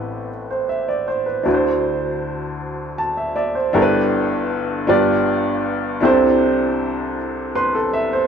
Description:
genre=gospel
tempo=52 BPM (dotted quarters)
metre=6/8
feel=straight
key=G major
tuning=A4 = 440 Hz
part: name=clear upright piano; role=solo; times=0.0-8.3 s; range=G1 to C6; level=-17 LUFS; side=equal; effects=none
room=moderate stone room reverb, RT60 1.1 s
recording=band playing live in one room, nothing above 10.7 kHz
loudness=-17 LUFS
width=side -7 dB against mid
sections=0.0-3.8 A section; 3.8-8.3 B section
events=upright piano fill 2.6-3.8, 7.2-8.3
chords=0.0 Am9; 1.5 D9; 3.8 G69; 4.9 G7; 6.0 C69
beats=0.31 | 1.46 2.61 | 3.75 4.90 | 6.04 7.18

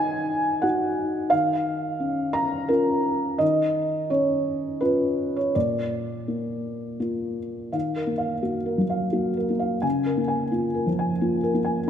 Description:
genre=neoclassical minimalist piano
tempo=86 BPM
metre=3/4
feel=rubato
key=Eb minor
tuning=A4 = 440 Hz
part: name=felt-muted upright piano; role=solo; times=0.0-11.9 s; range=Bb2 to Bb5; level=-22 LUFS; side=equal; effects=none
room=wet concert hall reverb, RT60 2.5 s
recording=none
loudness=-22 LUFS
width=side -8 dB against mid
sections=0.0-7.7 A section; 7.7-11.9 B section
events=none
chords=0.0 Ebm; 1.3 Dbadd9/Eb; 5.5 Bb; 7.7 Ebmadd9; 9.8 Db6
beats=0.63 | 1.32 2.01 2.70 | 3.41 4.11 4.82 | 5.54 6.28 7.01 | 7.74 8.44 9.14 | 9.84 10.53 11.21 | 11.89

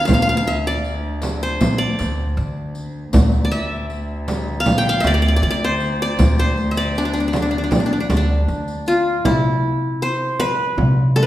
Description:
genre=Turkish makam ensemble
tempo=79 BPM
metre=4/4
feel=straight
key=D makam ussak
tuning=A4 = 440 Hz
part: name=qanun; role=melody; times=0.0-11.3 s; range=D4 to G5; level=-20 LUFS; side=left 1 dB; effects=none
part: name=upright bass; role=bass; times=0.0-11.3 s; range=D2 to D3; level=-20 LUFS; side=equal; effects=none
part: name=warm cello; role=drone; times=0.0-9.3 s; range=D2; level=-27 LUFS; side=left 1 dB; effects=none
part: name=frame drum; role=percussion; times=0.1-11.3 s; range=none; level=-21 LUFS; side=right 1 dB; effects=none
part: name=riq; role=percussion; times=0.1-9.0 s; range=none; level=-27 LUFS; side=left 2 dB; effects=none
room=wet recital hall reverb, RT60 1.4 s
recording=recorded in a church or concert hall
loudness=-16 LUFS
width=side -14 dB against mid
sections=0.0-9.2 A section; 9.2-11.3 B section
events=none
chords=none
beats=| 0.09 0.85 1.61 2.37 | 3.13 3.90 4.66 5.42 | 6.19 6.95 7.72 8.48 | 9.25 10.01 10.78

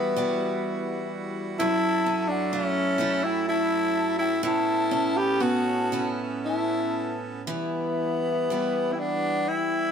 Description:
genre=celtic folk, Celtic slow air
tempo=57-64 BPM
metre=3/4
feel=rubato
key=E dorian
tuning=A4 = 441 Hz
part: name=growling tenor saxophone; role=melody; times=0.0-9.9 s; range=B3 to G4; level=-25 LUFS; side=equal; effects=none
part: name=baroque flute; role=second line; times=0.0-9.9 s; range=E5 to B5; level=-31 LUFS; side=left 4 dB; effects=none
part: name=picked steel-string acoustic guitar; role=accompaniment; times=0.0-9.9 s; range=F#2 to F#4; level=-30 LUFS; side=right 2 dB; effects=none
part: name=accordion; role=sustained chords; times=0.0-9.9 s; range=E3 to A4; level=-35 LUFS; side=right 1 dB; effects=none
room=wet studio reverb, RT60 0.8 s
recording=band playing live in one room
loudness=-23 LUFS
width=side -7 dB against mid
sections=0.0-7.5 A section; 7.5-9.9 B section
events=none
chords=0.0 Emadd9; 1.6 F#m7; 4.4 Aadd9; 7.5 Em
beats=0.66 | 1.60 2.54 3.49 | 4.44 5.41 6.44 | 7.48 8.51 9.51

